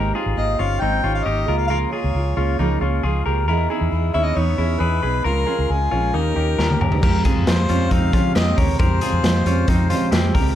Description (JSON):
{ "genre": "jangly indie pop", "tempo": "135 BPM", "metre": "4/4", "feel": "straight", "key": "unclear", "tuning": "A4 = 441 Hz", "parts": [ { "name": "picked steel-string acoustic guitar", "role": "accompaniment", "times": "0.0-10.6 s", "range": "Db3 to C5", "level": "-25 LUFS", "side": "right 6 dB", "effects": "none" }, { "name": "semi-hollow electric guitar", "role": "arpeggios", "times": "0.0-10.6 s", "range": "Bb3 to B4", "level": "-25 LUFS", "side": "left 5 dB", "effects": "spring reverb, tape echo" }, { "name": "vintage muted fingered electric bass", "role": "bass", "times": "0.0-10.5 s", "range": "G1 to F3", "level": "-21 LUFS", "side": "equal", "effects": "none" }, { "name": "mellow harmonica", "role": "melody", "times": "0.4-10.3 s", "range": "Ab4 to G5", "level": "-25 LUFS", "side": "left 2 dB", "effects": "none" }, { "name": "raw garage drum kit", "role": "drums", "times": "6.6-10.4 s", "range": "crash cymbal, hi-hat, kick drum, snare drum, toms", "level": "-20 LUFS", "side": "equal", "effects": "none" } ], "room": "moderate club reverb, RT60 0.5 s", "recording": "none", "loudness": "-17 LUFS", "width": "side -11 dB against mid", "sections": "0.0-7.0 A section; 7.0-10.6 B section", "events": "drum fill 6.6-7.0", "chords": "0.0 Abmaj9; 1.5 Db6; 3.5 Emaj7; 5.3 Db6; 6.1 Eb7; 7.0 Fmadd9", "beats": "0.37 0.81 1.26 | 1.70 2.15 2.59 3.04 | 3.48 3.92 4.37 4.81 | 5.26 5.70 6.14 6.59 | 7.03 7.47 7.92 8.36 | 8.80 9.24 9.68 10.12" }